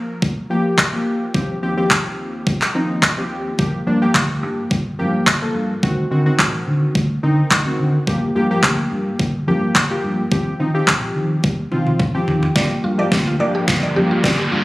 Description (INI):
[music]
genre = dance-pop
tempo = 107 BPM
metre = 4/4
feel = straight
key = G minor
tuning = A4 = 439 Hz
[part]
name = warm analog keys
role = accompaniment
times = 0.0-14.6 s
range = Eb2 to Bb4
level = -21 LUFS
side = left 1 dB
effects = chorus, sidechain pumping
[part]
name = pop drum kit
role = drums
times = 0.2-14.4 s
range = handclaps, kick drum, snare drum, toms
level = -17 LUFS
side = equal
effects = overdrive
[part]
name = vintage muted fingered electric bass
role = bass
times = 3.6-14.6 s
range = G1 to Eb3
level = -20 LUFS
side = equal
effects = sidechain pumping
[part]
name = warm analog pad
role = sustained chords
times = 12.6-14.6 s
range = F3 to G4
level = -26 LUFS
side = right 1 dB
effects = chorus, sidechain pumping
[part]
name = mallet-like synth pluck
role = arpeggios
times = 12.6-14.6 s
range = F4 to D5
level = -23 LUFS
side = right 1 dB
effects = chorus, sidechain pumping, ping-pong delay
[part]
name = riser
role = sound effects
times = 13.3-14.6 s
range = none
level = -25 LUFS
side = equal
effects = none
[sound]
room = light reverb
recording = recorded on a phone in the room, studio reverb, compression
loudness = -16 LUFS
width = side -19 dB against mid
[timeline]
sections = 0.0-12.6 A section; 12.6-14.6 B section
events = drum fill 11.4-12.6, 12.6-14.6; build-up 12.6-14.6; riser 13.3-14.6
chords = 0.0 Gm7; 1.3 Eb69; 3.6 Gm7; 5.8 D7b9; 8.1 Gm7; 10.3 Eb69; 12.6 Gm7